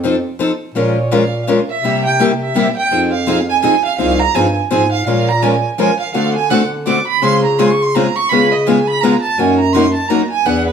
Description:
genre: acoustic string swing (jazz manouche)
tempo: 167 BPM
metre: 3/4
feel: swing 60% on 8ths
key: F minor, Bb minor from 5.1 s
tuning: A4 = 440 Hz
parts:
  - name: picked steel-string acoustic guitar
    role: accompaniment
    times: 0.0-10.7 s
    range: C3 to Bb4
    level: -16 LUFS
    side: left 4 dB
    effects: none
  - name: mellow bass clarinet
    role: bass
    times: 0.0-10.7 s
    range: C2 to D3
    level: -18 LUFS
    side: right 1 dB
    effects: none
  - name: picked steel-string acoustic guitar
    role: accompaniment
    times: 0.8-10.7 s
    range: C3 to B4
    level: -23 LUFS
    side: right 5 dB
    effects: none
  - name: warm violin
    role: second line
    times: 1.0-10.7 s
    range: B4 to D6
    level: -16 LUFS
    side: right 6 dB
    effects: none
room: moderate large studio reverb, RT60 0.9 s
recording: band playing live in one room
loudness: -12 LUFS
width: side -7 dB against mid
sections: 0.0-5.1 A section; 5.1-10.7 A section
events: violin solo 0.0-10.7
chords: 0.0 F7; 0.8 Bbm7; 1.8 C7; 2.9 Fm7; 5.1 Bbm7; 6.1 D7; 7.2 Dbmaj7; 8.3 Db7; 9.4 Gb6

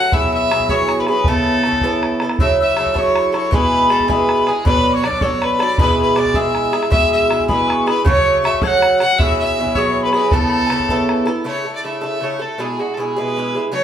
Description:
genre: celtic folk, Celtic jig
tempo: 106 BPM (dotted quarters)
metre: 6/8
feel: straight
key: unclear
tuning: A4 = 440 Hz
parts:
  - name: rich fiddle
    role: melody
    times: 0.0-13.8 s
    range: F#4 to F#5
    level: -20 LUFS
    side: left 1 dB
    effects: none
  - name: mellow mid whistle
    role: second line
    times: 0.0-11.3 s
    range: G#5 to G#6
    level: -21 LUFS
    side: left 5 dB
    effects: none
  - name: Irish bouzouki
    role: accompaniment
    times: 0.0-13.8 s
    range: B2 to A4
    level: -18 LUFS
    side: right 2 dB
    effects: none
  - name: bodhran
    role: percussion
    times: 0.1-11.4 s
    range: none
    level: -21 LUFS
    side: equal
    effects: none
room: wet large studio reverb, RT60 1.0 s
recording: band playing live in one room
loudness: -14 LUFS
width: side -9 dB against mid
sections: 0.0-2.4 A section; 2.4-11.5 A section; 11.5-13.8 B section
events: none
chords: 0.1 Eadd9; 1.3 Aadd9; 2.4 F#m7; 3.5 E; 4.7 Bm7; 5.8 E; 8.1 F#m; 9.2 Eadd9; 10.3 Aadd9; 11.5 A; 12.6 E

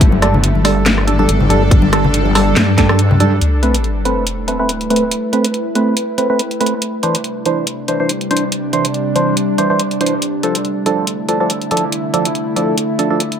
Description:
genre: deep dubstep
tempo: 141 BPM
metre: 4/4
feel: swing 55% on 16ths, half-time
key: A minor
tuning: A4 = 440 Hz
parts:
  - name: bowed-like drone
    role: sustained chords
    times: 0.0-13.4 s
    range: C3 to B4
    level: -19 LUFS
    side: equal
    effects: built-in reverb
  - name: wobble bass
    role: bass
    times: 0.0-3.4 s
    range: G1 to G2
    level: -14 LUFS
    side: equal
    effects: chorus
  - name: electronic kick drum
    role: drums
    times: 0.0-2.9 s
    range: none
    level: -11 LUFS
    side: equal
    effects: none
  - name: garage drum kit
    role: drums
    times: 0.0-13.4 s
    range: hi-hat, rim click, snare drum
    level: -19 LUFS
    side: equal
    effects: none
  - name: congas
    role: percussion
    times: 0.1-3.3 s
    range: none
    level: -20 LUFS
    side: left 4 dB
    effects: dub echo
  - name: percussive organ stab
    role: stabs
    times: 0.2-13.2 s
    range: E3 to C5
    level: -17 LUFS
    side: right 2 dB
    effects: chorus, phaser, dub echo
  - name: sub drop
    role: sound effects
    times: 3.4-5.1 s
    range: none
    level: -19 LUFS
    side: equal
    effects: none
room: moderate spring reverb, RT60 1.6 s, digital ambience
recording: none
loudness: -13 LUFS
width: side -8 dB against mid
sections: 0.0-3.4 A section; 3.4-13.4 B section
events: drop 0.0-3.4; impact 3.4-5.1; filter sweep on synth stab 3.4-13.4; filter sweep on synth drone 3.4-13.4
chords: 0.0 Gsus2; 3.4 Amadd9; 6.8 Cadd9; 10.2 Dm

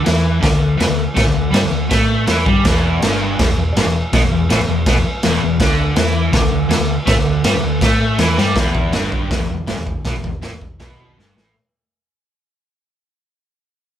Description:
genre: garage rock duo or trio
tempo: 162 BPM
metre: 4/4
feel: straight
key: E minor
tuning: A4 = 441 Hz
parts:
  - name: fuzz guitar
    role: riff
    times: 0.0-11.5 s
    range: E2 to A3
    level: -18 LUFS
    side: equal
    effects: distortion
  - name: hollow-body short-scale fingered electric bass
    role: bass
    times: 0.0-11.5 s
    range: E1 to A2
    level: -20 LUFS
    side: equal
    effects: overdrive
  - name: raw garage drum kit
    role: drums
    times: 0.1-11.4 s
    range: crash cymbal, kick drum, snare drum, toms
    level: -17 LUFS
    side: equal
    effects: none
room: moderate studio ambience, RT60 0.5 s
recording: band playing live in one room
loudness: -13 LUFS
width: side -10 dB against mid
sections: 0.0-2.6 A section; 2.6-8.6 A section; 8.6-11.5 B section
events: drum fill 8.4, 11.2-11.5; fade-out 8.6-11.5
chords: 0.0 D5; 2.6 Em; 5.6 D5; 8.6 Em

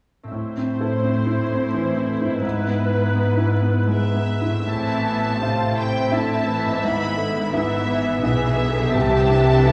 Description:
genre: cinematic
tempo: 83 BPM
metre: 3/4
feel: uneven beats, rubato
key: A minor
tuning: A4 = 440 Hz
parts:
  - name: concert harp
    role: arpeggios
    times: 0.2-9.7 s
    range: G#2 to E5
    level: -30 LUFS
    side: equal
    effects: none
  - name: clear baby grand piano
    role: accompaniment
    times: 0.3-9.7 s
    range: C2 to E5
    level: -27 LUFS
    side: equal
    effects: none
  - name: muted symphonic viola section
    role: accompaniment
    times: 0.3-9.7 s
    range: C3 to C5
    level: -29 LUFS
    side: equal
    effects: none
  - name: muted studio cello section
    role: bass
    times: 0.3-9.7 s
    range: G#2 to C3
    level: -27 LUFS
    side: equal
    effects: none
  - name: muted chamber violin section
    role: melody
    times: 3.9-9.7 s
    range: E5 to B5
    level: -30 LUFS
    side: equal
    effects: none
  - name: muted symphonic violin section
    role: second line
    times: 4.7-9.7 s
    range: E4 to E5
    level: -28 LUFS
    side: equal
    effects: none
  - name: muted symphonic double bass section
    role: bass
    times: 4.7-9.7 s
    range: G#1 to C2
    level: -29 LUFS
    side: equal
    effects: none
room: wet recital hall reverb, RT60 1.3 s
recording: recorded in a church or concert hall, small room reverb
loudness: -21 LUFS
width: mono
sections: 0.3-4.7 A section; 4.7-9.7 B section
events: none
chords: 0.3 Am; 6.8 E/G#; 9.0 C6

